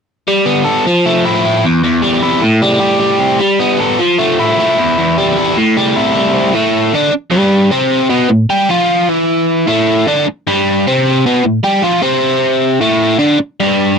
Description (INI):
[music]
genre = rock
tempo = 153 BPM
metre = 4/4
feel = straight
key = A minor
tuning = A4 = 442 Hz
[part]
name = biting overdriven guitar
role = solo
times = 0.3-14.0 s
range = E2 to A4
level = -10 LUFS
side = equal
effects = none
[sound]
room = light reverb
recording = dry, close 1970s-style studio recording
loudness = -10 LUFS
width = side -6 dB against mid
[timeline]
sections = 0.3-6.5 A section; 6.5-14.0 B section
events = none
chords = 0.3 Gadd9; 0.9 Fmaj7; 1.6 Em; 2.4 Am7; 3.4 Gadd9; 4.0 Fmaj7; 4.8 Em; 5.6 Am7; 6.5 Am